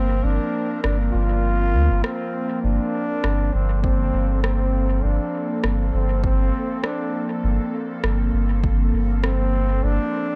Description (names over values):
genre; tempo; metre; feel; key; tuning
ambient dub; 100 BPM; 4/4; swing 57% on 16ths; G minor; A4 = 439 Hz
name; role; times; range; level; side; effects
clear trombone; melody; 0.0-10.4 s; C4 to F4; -29 LUFS; equal; dub echo
airy breathy pad; sustained chords; 0.0-10.4 s; F3 to Bb4; -30 LUFS; equal; chorus
soft dub sub bass; bass; 0.0-10.0 s; G1 to D2; -23 LUFS; equal; none
drifting glass-harmonics texture; texture; 0.7-10.4 s; Bb3; -36 LUFS; equal; none
electronic rim click; drums; 0.8-9.4 s; none; -33 LUFS; equal; studio ambience, dub echo
electronic kick drum; drums; 3.8-8.8 s; none; -26 LUFS; equal; overdrive, studio ambience
room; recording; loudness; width
light reverb; nothing above 10.7 kHz; -22 LUFS; mono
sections
0.0-10.4 A section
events
kick drops out 1.4-2.6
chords
0.0 Gm11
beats
| 0.24 0.84 1.44 2.04 | 2.64 3.24 3.84 4.44 | 5.04 5.64 6.24 6.84 | 7.44 8.04 8.64 9.24 | 9.84